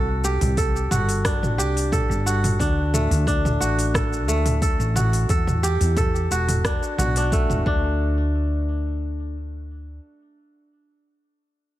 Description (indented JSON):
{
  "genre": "organic downtempo",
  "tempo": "89 BPM",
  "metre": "4/4",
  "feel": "straight",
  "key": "unclear",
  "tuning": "A4 = 440 Hz",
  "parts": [
    { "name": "kora", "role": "arpeggios", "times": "0.0-9.3 s", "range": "A3 to A4", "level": "-25 LUFS", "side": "right 1 dB", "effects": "ping-pong delay" },
    { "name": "woody fretless electric bass", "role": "bass", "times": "0.0-10.0 s", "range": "E1 to E2", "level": "-23 LUFS", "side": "equal", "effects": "sidechain pumping" },
    { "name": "deep house drum kit", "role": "drums", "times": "0.2-7.6 s", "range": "hi-hat, rim click, shaker, toms", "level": "-27 LUFS", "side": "equal", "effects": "small room reverb" },
    { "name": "electronic kick drum", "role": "drums", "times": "0.6-7.8 s", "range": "none", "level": "-24 LUFS", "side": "equal", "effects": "small room reverb" }
  ],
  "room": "little or no reverb",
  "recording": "none",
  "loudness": "-19 LUFS",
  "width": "side -14 dB against mid",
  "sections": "0.0-8.0 A section; 8.0-10.7 B section",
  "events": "none",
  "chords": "0.0 C5; 2.6 D5; 5.3 Emadd9; 7.7 N.C."
}